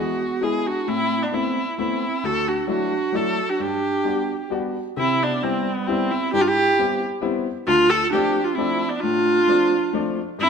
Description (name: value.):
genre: musette waltz.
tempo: 132 BPM.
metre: 3/4.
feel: straight.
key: G major, C major from 5.0 s.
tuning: A4 = 443 Hz.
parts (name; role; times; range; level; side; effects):
clear viola; melody; 0.0-10.5 s; B3 to A4; -21 LUFS; equal; none.
dark clarinet; second line; 0.0-10.5 s; G3 to F#4; -27 LUFS; right 8 dB; none.
clear upright piano; accompaniment; 0.0-10.5 s; D2 to G#4; -26 LUFS; left 5 dB; none.
room: moderate scoring stage reverb, RT60 1.6 s.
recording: none.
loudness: -19 LUFS.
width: side -6 dB against mid.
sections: 0.0-5.0 A section; 5.0-10.5 B section.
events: none.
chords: 0.0 E; 0.9 Amadd9; 2.2 Dadd9; 3.6 Gmaj7; 5.0 Cmaj7; 7.7 Dm7.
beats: 0.42 | 0.88 1.33 1.78 | 2.23 2.68 3.14 | 3.59 4.05 4.51 | 4.97 5.42 5.88 | 6.33 6.78 7.23 | 7.68 8.13 8.58 | 9.03 9.48 9.93 | 10.39.